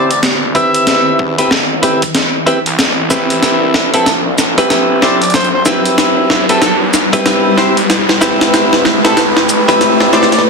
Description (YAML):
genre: glitch hop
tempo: 94 BPM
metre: 4/4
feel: swing 61% on 16ths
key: A minor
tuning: A4 = 441 Hz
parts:
  - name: overdriven harmonica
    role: melody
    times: 0.0-10.4 s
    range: A4 to E5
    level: -17 LUFS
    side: equal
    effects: ping-pong delay
  - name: dark analog pad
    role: sustained chords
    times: 0.0-10.5 s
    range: B4 to B5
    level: -23 LUFS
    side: equal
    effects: none
  - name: direct-recorded clean electric guitar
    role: stabs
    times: 0.0-10.3 s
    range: C4 to C5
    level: -14 LUFS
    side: equal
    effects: vintage 12-bit sampler grit, sidechain pumping, low-pass filter, ping-pong delay
  - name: phased detuned saw bass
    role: bass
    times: 0.0-10.4 s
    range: A1 to E2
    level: -21 LUFS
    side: equal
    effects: phaser, high-pass filter
  - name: riser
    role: sound effects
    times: 0.0-10.4 s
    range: none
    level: -18 LUFS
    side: left 1 dB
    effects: none
  - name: boom bap sampler-style drum kit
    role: drums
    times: 0.1-10.4 s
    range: hi-hat, shaker, snare drum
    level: -13 LUFS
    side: equal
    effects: none
  - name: electronic kick drum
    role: drums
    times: 0.2-9.0 s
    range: none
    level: -24 LUFS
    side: equal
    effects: none
room: wet small room reverb, RT60 0.5 s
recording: dense, heavily limited modern master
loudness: -9 LUFS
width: side -4 dB against mid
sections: 0.0-10.5 A section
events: build-up 0.0-10.5; drum fill 0.0-10.4; riser 0.0-10.4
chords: 0.0 Am9